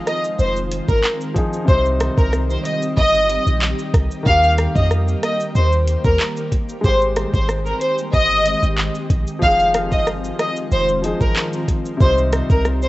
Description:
dancehall; 93 BPM; 4/4; straight; A4 = 440 Hz
clear baby grand piano; accompaniment; 0.0-12.9 s; C3 to C5; -27 LUFS; left 2 dB; cassette tape
ethereal airy pad; sustained chords; 0.0-12.9 s; Eb3 to G4; -28 LUFS; equal; ensemble chorus, built-in reverb, sidechain pumping, cassette tape
warm studio violin section; melody; 0.1-12.9 s; Bb4 to F5; -19 LUFS; equal; cassette tape, analog delay
island pop drum kit; drums; 0.1-12.9 s; handclaps, hi-hat, kick drum, rim click, shaker; -20 LUFS; equal; cassette tape
clean 808-style bass; bass; 0.4-12.9 s; F1 to F2; -19 LUFS; equal
little or no reverb; home recording on cassette, nothing above 8.0 kHz; -15 LUFS; side -18 dB against mid
0.0-12.9 A section
0.0 Fm7; 1.7 Cm; 4.3 Eb; 6.8 Abmaj7; 9.4 Fm7; 12.0 Cm

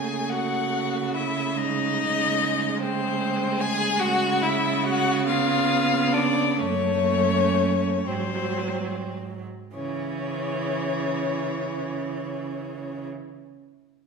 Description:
classical, slow romantic movement for string quartet; 34-50 BPM (dotted quarters); 6/8; rubato; C# minor; A4 = 441 Hz
warm violin; melody; 0.0-13.1 s; B#4 to G#5; -27 LUFS; left 7 dB
warm violin; second line; 0.0-13.1 s; B#3 to G#4; -29 LUFS; left 1 dB
rich viola; accompaniment; 0.0-13.1 s; E3 to B3; -30 LUFS; right 3 dB
warm cello; bass; 0.0-13.1 s; F#2 to C#3; -28 LUFS; right 6 dB
wet recital hall reverb, RT60 1.6 s; -22 LUFS; side -5 dB against mid
0.0-9.7 A section; 9.7-12.7 B section
slowing down 2.8-9.7
0.0 F#m/C#; 1.6 C#5; 5.3 C#7; 6.6 F#m; 8.1 G#7; 9.7 C#m

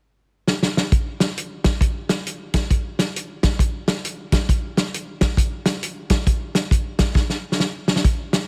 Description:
gospel; 135 BPM; 4/4; swing 63% on 8ths
warm soul drum kit; drums; 0.5-8.4 s; hi-hat, kick drum, snare drum; -21 LUFS; equal
light reverb; dense, heavily limited modern master; -22 LUFS; mono
0.9-8.1 A section
drum fill 0.5-0.9, 7.2-8.1

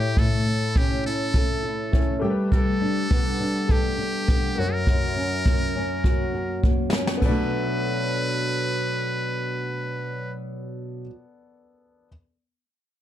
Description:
acoustic pop; 102 BPM; 4/4; straight; B minor; A4 = 440 Hz
trumpet with metal mute; melody; 0.0-10.3 s; F#4 to B4; -28 LUFS; equal
clear grand piano; accompaniment; 0.0-12.1 s; A3 to D5; -34 LUFS; left 4 dB
nylon-string guitar; accompaniment; 0.0-11.1 s; F#2 to A4; -26 LUFS; equal; double-tracked left and right
jazz brush drum kit; drums; 0.2-7.4 s; crash cymbal, kick drum, snare drum; -22 LUFS; equal
light reverb; dark, warm production; -21 LUFS; side -11 dB against mid
0.0-7.2 A section; 7.2-9.6 B section
drum fill 6.0-7.2
0.0 A; 2.2 Gadd9; 4.6 F#; 7.2 Bm7

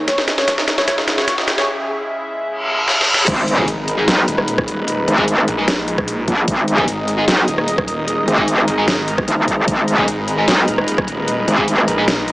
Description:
heavy wobble dubstep; 150 BPM; 4/4; half-time; G# minor; A4 = 440 Hz
wide unison pluck; melody; 0.0-1.7 s; D#4 to C#5; -20 LUFS; equal; dub echo
lush unison pad; sustained chords; 0.0-12.3 s; C#2 to D#5; -22 LUFS; equal; chorus, sidechain pumping
riser, reverse cymbal and impact; sound effects; 0.0-4.9 s; -21 LUFS; equal
dubstep drum kit; drums; 0.1-12.3 s; crash cymbal, hi-hat, rim click, snare drum; -19 LUFS; equal; overdrive, high-pass filter on snare, high-pass filter on hats, high-pass filter on cymbals
electronic kick drum; drums; 0.1-11.7 s; -24 LUFS; equal; overdrive
metallic wobble bass; bass; 3.3-11.9 s; G#1 to B1; -15 LUFS; equal; chorus, overdrive
fuzz guitar; stabs; 3.6-12.0 s; G#3 to G#4; -22 LUFS; equal; distortion, dub echo
snarling distorted saw bass; bass; 3.7-12.3 s; D#1 to A#1; -23 LUFS; equal; distortion, overdrive
moderate plate reverb, RT60 2.1 s; high-pass filter, small speaker sound; -14 LUFS; side -19 dB against mid
0.0-3.3 A section; 3.3-12.3 B section
build-up 0.0-3.3; drum fill 0.0-1.7, 2.9-3.3; riser 0.0-1.7; filter sweep on analog synth pad 0.0-3.3; filter sweep 0.0-3.3; reverse cymbal 2.6-3.3; drop 3.3-12.3; impact 3.3-4.9
0.1 C#m; 3.3 G#madd9

